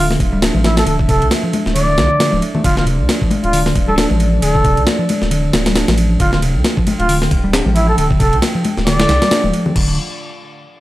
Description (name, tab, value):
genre	breakbeat, breaks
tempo	135 BPM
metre	4/4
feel	swing 57% on 16ths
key	unclear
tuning	A4 = 438 Hz
part	trumpet with bucket mute	melody	0.0-9.5 s	E4 to D5	-19 LUFS	equal	AM radio sound, tape echo
part	dark analog pad	sustained chords	0.0-10.0 s	F3 to G5	-25 LUFS	right 1 dB	chorus, sidechain pumping
part	overdriven picked electric bass	riff	0.0-10.0 s	C3 to D4	-20 LUFS	equal	none
part	saturated sub bass	bass	0.0-10.0 s	D1 to C2	-18 LUFS	equal	none
part	breakbeat sampler-style drum kit	drums	0.1-9.9 s	crash cymbal, hi-hat, kick drum, ride cymbal, snare drum	-17 LUFS	equal	overdrive
part	congas	percussion	0.5-9.7 s	none	-22 LUFS	left 3 dB	none
room	light reverb, digital ambience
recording	dry, gritty hardware recording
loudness	-12 LUFS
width	side -16 dB against mid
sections	0.0-9.8 A section; 9.8-10.8 B section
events	drop 0.0-9.8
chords	0.0 Dm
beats	0.42 | 0.87 1.31 1.76 2.20 | 2.65 3.09 3.53 3.98 | 4.42 4.87 5.31 5.76 | 6.20 6.64 7.09 7.53 | 7.98 8.42 8.87 9.31 | 9.76